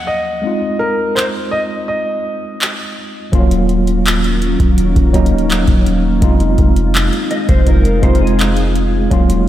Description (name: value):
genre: contemporary R&B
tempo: 83 BPM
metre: 4/4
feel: straight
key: unclear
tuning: A4 = 440 Hz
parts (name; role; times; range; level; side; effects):
- warm concert grand piano; melody; 0.0-2.9 s; Bb4 to Eb5; -18 LUFS; left 1 dB; tape echo
- tine electric piano; accompaniment; 0.0-9.5 s; Eb2 to F4; -18 LUFS; equal; overdrive, fast stereo tremolo
- booming analog drum machine; drums; 1.2-9.5 s; handclaps, hi-hat, kick drum; -15 LUFS; equal; none
- glassy FM pad; sustained chords; 3.8-9.5 s; Eb3 to F5; -21 LUFS; equal; ensemble chorus, built-in reverb
- warm 808-style bass; bass; 3.3-9.5 s; Db1 to F1; -15 LUFS; equal; none
- mellow electric guitar; arpeggios; 7.3-9.1 s; Ab4 to Eb5; -22 LUFS; left 2 dB; ensemble chorus, tape echo
room: moderate lush hall reverb, RT60 2.4 s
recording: dreamy mix soaked in reverb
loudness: -12 LUFS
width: side -12 dB against mid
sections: 0.0-3.3 A section; 3.3-9.5 B section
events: none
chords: 0.4 Fm7; 3.3 Ebm7; 6.2 Fm7